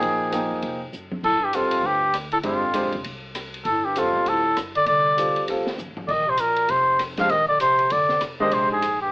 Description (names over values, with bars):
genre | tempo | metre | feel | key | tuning
modal jazz | 198 BPM | 4/4 | swing 61% on 8ths | unclear | A4 = 441 Hz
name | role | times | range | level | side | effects
trumpet with cup mute | melody | 0.0-9.1 s | F4 to F5 | -20 LUFS | equal | none
clear upright piano | accompaniment | 0.0-8.8 s | F3 to G5 | -25 LUFS | equal | none
upright bass | bass | 0.0-9.1 s | F1 to F2 | -39 LUFS | equal | none
open jazz drum kit | drums | 0.0-8.9 s | crash cymbal, hi-hat, kick drum, ride cymbal, rim click, snare drum, toms | -34 LUFS | equal | none
mellow bass clarinet | second line | 1.2-9.1 s | F2 to F3 | -32 LUFS | equal | none
room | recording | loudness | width
moderate club reverb, RT60 0.9 s | AM radio sound | -19 LUFS | side -27 dB against mid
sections
0.0-9.1 A section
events
drum fill 0.9-1.2, 5.8-6.1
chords
0.0 Bb7sus4; 1.2 G9sus4; 6.1 Bb9sus4